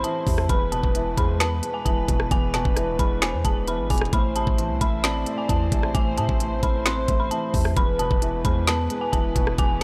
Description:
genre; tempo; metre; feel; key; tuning
hip hop, trap; 132 BPM; 4/4; half-time; A harmonic minor; A4 = 441 Hz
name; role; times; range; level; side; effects
dark detuned synth bell; melody; 0.0-9.8 s; G#5 to C6; -31 LUFS; equal; chorus, tape echo
breathy flute-like synth lead; second line; 0.0-9.8 s; G#4 to E5; -33 LUFS; equal; chorus, tape echo
felt-muted upright piano; accompaniment; 0.0-9.8 s; E2 to C4; -32 LUFS; equal; none
muted studio string section; sustained chords; 0.0-9.8 s; C3 to C5; -40 LUFS; equal; none
warm 808-style bass; bass; 0.0-9.8 s; D1 to A2; -30 LUFS; equal; none
trap drum kit; drums; 0.0-9.8 s; finger snaps, hi-hat, kick drum, rim click, snare drum; -25 LUFS; equal; none
room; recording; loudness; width
little or no reverb; dry, gritty hardware recording; -23 LUFS; mono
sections
0.0-9.8 A section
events
none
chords
0.5 E; 4.1 Am; 7.8 E

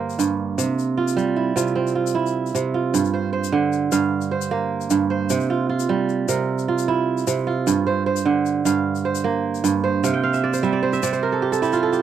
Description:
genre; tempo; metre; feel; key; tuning
west african traditional, West African string and xylophone music; 102 BPM (dotted quarters); 12/8; straight; G dorian; A4 = 438 Hz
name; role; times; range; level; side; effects
kora; arpeggios; 0.0-12.0 s; G2 to G5; -19 LUFS; right 5 dB; none
egg shaker; percussion; 0.1-12.0 s; none; -31 LUFS; left 22 dB; none
room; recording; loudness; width
light reverb; dry, close 1970s-style studio recording; -19 LUFS; side -10 dB against mid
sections
0.0-2.9 A section; 2.9-12.0 B section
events
kora fill 10.0-12.0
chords
0.0 Gm; 0.6 C; 2.9 Gm; 5.3 C; 7.7 Gm; 10.0 C

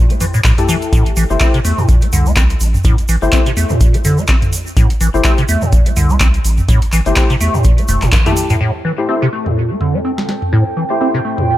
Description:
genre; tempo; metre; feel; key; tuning
acid house; 125 BPM; 4/4; swing 56% on 16ths; A phrygian; A4 = 440 Hz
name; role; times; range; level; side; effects
liquid acid bass; riff; 0.0-11.6 s; G2 to C4; -17 LUFS; equal; phaser, lush chorus, cassette tape, sidechain pumping, tape echo
booming analog drum machine; drums; 0.1-11.5 s; handclaps, hi-hat, snare drum, toms; -19 LUFS; equal; overdrive
egg shaker; percussion; 0.1-8.6 s; none; -27 LUFS; right 5 dB; none
saturated sub bass; bass; 0.4-8.1 s; E1 to E2; -15 LUFS; equal; sidechain pumping
electronic kick drum; drums; 0.4-8.2 s; none; -13 LUFS; equal; overdrive
percussive organ stab; stabs; 0.6-11.2 s; A3 to C5; -20 LUFS; left 4 dB; ensemble chorus, cassette tape, tape echo
warbly tape-like pad; texture; 9.4-11.6 s; C4 to G5; -21 LUFS; right 3 dB; chorus, built-in reverb, phaser, sidechain pumping
room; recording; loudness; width
little or no reverb; none; -11 LUFS; side -14 dB against mid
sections
0.0-8.6 A section; 8.6-11.6 B section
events
drum fill 8.1-8.6; band accent 8.1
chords
0.0 Am7

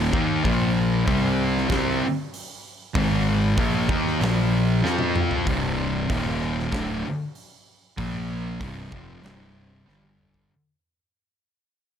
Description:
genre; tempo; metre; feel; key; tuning
stoner and doom metal; 96 BPM; 4/4; straight; C minor; A4 = 440 Hz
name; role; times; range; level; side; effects
thick fuzz guitar; riff; 0.0-10.5 s; C2 to F4; -24 LUFS; left 5 dB; distortion
thick fuzz guitar; riff; 0.0-10.5 s; C2 to F4; -27 LUFS; right 10 dB; distortion
fuzz fingered electric bass; bass; 0.0-10.5 s; C1 to F2; -29 LUFS; equal; overdrive
big rock drum kit; drums; 0.1-10.5 s; hi-hat, kick drum, snare drum, toms; -29 LUFS; equal; none
room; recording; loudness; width
small room ambience; none; -21 LUFS; side -8 dB against mid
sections
0.0-5.5 A section; 5.5-10.5 B section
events
drum fill 4.8-5.5, 9.9-10.5; fade-out 5.5-10.5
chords
0.5 Bb5; 1.1 C5; 3.0 Ab5; 3.6 Bb5; 4.8 F5; 5.5 C5; 6.1 Eb5; 6.7 D5; 8.0 Bb5; 8.6 C5; 9.9 G5

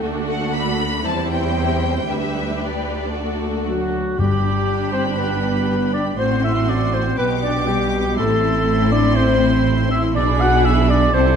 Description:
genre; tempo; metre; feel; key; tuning
classical, dramatic, fast romantic movement for symphony orchestra; 120 BPM; 4/4; straight; G major; A4 = 440 Hz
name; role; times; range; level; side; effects
warm symphonic violin section; second line; 0.0-11.4 s; E4 to C5; -27 LUFS; left 3 dB; none
clear symphonic viola section; accompaniment; 0.0-11.4 s; G3 to E4; -26 LUFS; right 1 dB; none
clear symphonic cello section; bass; 0.0-11.4 s; D2 to C3; -24 LUFS; right 3 dB; none
rich symphonic violin section; melody; 0.3-11.4 s; D5 to D6; -29 LUFS; left 3 dB; none
mellow clarinet; second line; 3.7-11.4 s; F#4 to F#5; -26 LUFS; left 2 dB; none
warm oboe; second line; 3.7-11.4 s; F#4 to F#5; -22 LUFS; right 1 dB; none
warm French horn section; sustained chords; 3.7-11.2 s; F#3 to F#4; -23 LUFS; left 5 dB; none
rich symphonic double bass section; bass; 4.2-11.4 s; G1 to C2; -21 LUFS; right 2 dB; none
timpani; percussion; 4.2-4.9 s; G2; -23 LUFS; left 2 dB; none
room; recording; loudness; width
moderate scoring stage reverb, RT60 1.5 s; none; -16 LUFS; side -7 dB against mid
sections
0.0-4.2 A section; 4.2-11.4 B section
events
none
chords
0.0 D; 1.1 C/E; 2.1 G/D; 3.1 D; 4.2 G; 6.2 F#dim/A; 7.2 G/B; 8.2 Am; 10.2 G#dim/B

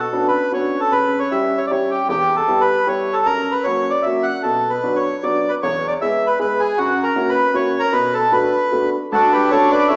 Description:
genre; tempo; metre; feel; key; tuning
musette waltz; 153 BPM; 3/4; rubato; B minor; A4 = 439 Hz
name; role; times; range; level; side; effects
bandoneon; melody; 0.0-10.0 s; F#4 to F#5; -16 LUFS; equal; none
warm upright piano; accompaniment; 0.0-10.0 s; D2 to G#4; -21 LUFS; equal; none
clear violin; second line; 9.1-10.0 s; D4; -21 LUFS; equal; none
room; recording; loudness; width
wet recital hall reverb, RT60 1.4 s; recorded in a church or concert hall, small speaker sound; -15 LUFS; side -30 dB against mid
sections
0.0-9.1 A section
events
none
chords
0.0 Bmadd9; 0.9 C#dim; 2.1 Em; 3.3 F#; 4.5 Bm; 5.6 E; 6.8 F#7; 7.9 Bm7; 9.1 Dmaj7

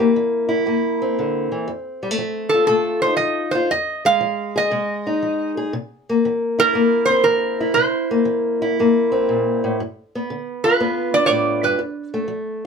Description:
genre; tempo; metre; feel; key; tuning
acoustic country blues, solo or duo; 118 BPM; 4/4; swing 68% on 8ths; C mixolydian; A4 = 438 Hz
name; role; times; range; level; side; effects
metal-body resonator slide guitar; melody; 0.0-11.8 s; G4 to F5; -18 LUFS; right 2 dB; none
fingerpicked old ladder-braced acoustic guitar; accompaniment; 0.0-12.7 s; F2 to Ab4; -19 LUFS; left 2 dB; none
room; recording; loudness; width
moderate studio reverb, RT60 0.5 s; none; -17 LUFS; side -6 dB against mid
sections
0.0-12.7 A section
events
none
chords
0.0 C7; 1.7 F7; 3.7 Fm7; 5.7 C7; 9.8 G7; 11.8 F

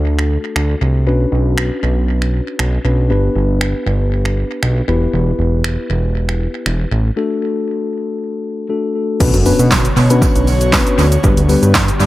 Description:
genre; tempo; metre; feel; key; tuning
dance-pop; 118 BPM; 4/4; straight; B minor; A4 = 440 Hz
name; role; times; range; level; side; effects
mellow tine electric piano; accompaniment; 0.0-11.9 s; G3 to B4; -19 LUFS; left 2 dB; sidechain pumping, analog delay
fat analog bass; bass; 0.0-12.1 s; E1 to B2; -14 LUFS; equal; sidechain pumping
deep house drum kit; drums; 0.2-12.1 s; crash cymbal, finger snaps, handclaps, hi-hat, kick drum, shaker, snare drum; -17 LUFS; right 1 dB; overdrive, analog delay
airy breathy pad; sustained chords; 9.5-12.1 s; D3 to C#5; -22 LUFS; equal; chorus, sidechain pumping
tambourine; percussion; 9.2-12.1 s; none; -31 LUFS; right 11 dB; none
impact; sound effects; 9.2-11.2 s; none; -26 LUFS; right 1 dB; none
room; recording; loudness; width
light reverb; echo-heavy mix; -13 LUFS; side -16 dB against mid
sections
0.0-9.2 A section; 9.2-12.1 B section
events
break 7.2-9.2; impact 9.2-11.2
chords
0.0 D; 1.1 Bmadd9; 3.1 G; 4.9 Em; 7.2 D; 9.2 Bmadd9; 11.2 G

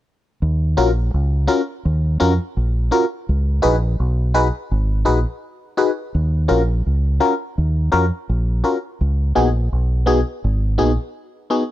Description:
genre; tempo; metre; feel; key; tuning
lovers rock reggae; 84 BPM; 4/4; straight; Eb minor; A4 = 440 Hz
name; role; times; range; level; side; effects
deep dub fingered electric bass; bass; 0.4-11.0 s; Ab1 to F2; -17 LUFS; equal; none
FM electric piano; accompaniment; 0.8-11.6 s; Cb4 to Cb5; -18 LUFS; left 2 dB; chorus, phaser
room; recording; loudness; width
digital ambience; dry, close 1970s-style studio recording; -16 LUFS; side -14 dB against mid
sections
0.4-11.7 A section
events
none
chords
0.4 Ebm9; 3.3 Db7sus4; 6.1 Ebm9; 9.0 Db7sus4

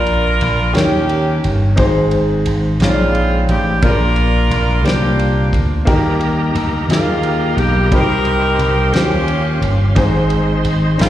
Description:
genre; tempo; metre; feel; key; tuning
slow gospel; 59 BPM (dotted quarters); 6/8; straight; Eb major; A4 = 440 Hz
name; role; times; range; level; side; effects
clear saxophone section; melody; 0.0-11.1 s; Ab3 to Bb4; -18 LUFS; equal; slapback echo
warm upright piano; accompaniment; 0.0-11.1 s; Ab2 to D5; -19 LUFS; left 1 dB; slapback echo
slap bass with an envelope filter; bass; 0.0-11.1 s; G1 to Eb2; -16 LUFS; equal; none
warm soul drum kit; drums; 0.1-11.1 s; kick drum, ride cymbal, snare drum; -22 LUFS; equal; none
bright tonewheel organ; sustained chords; 5.9-11.1 s; Ab3 to C6; -23 LUFS; right 3 dB; fast rotary speaker, overdrive, chorus vibrato
room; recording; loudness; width
light reverb, small room ambience; live gig heard through the venue's PA, recital hall reverb; -12 LUFS; side -12 dB against mid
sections
0.0-11.1 A section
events
none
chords
0.0 Bb; 0.7 Eb7; 1.8 Ab; 3.8 Bb; 5.9 Eb; 7.9 Cm; 8.9 Eb13; 10.0 Ab

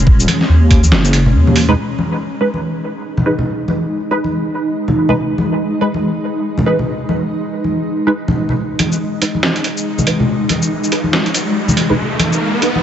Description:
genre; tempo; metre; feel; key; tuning
deep dubstep; 141 BPM; 4/4; swing 60% on 16ths, half-time; G# minor; A4 = 440 Hz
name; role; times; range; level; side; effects
granular cloud pad; sustained chords; 0.0-12.8 s; G#3 to D#4; -20 LUFS; equal; built-in reverb
deep soft wobble bass; bass; 0.0-1.8 s; D#1 to D#2; -11 LUFS; equal; chorus
electronic kick drum; drums; 0.1-0.8 s; none; -10 LUFS; equal; none
trip hop sampler-style drum kit; drums; 0.2-1.7, 8.8-12.7 s; hi-hat, shaker, snare drum; -18 LUFS; right 1 dB; overdrive, high-pass filter on perc, high-pass filter on hats, high-pass filter on snare, high-pass filter on room
congas; percussion; 0.3-12.8 s; none; -19 LUFS; equal; none
filtered dub chord stab; stabs; 1.7-12.7 s; G#3 to B4; -21 LUFS; right 1 dB; phaser, ensemble chorus, dub echo
riser; sound effects; 9.9-12.8 s; none; -22 LUFS; right 1 dB; none
room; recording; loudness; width
light reverb, digital ambience; nothing above 8.0 kHz; -13 LUFS; side -10 dB against mid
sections
0.0-1.8 A section; 1.8-8.6 B section; 8.6-12.8 C section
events
drop 0.0-1.8; kick drops out 0.9-1.8; filter sweep on ambient pad 1.8-8.6; build-up 8.6-12.8; filter sweep on synth stab 8.6-12.8; riser 9.9-12.8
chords
0.0 G#5

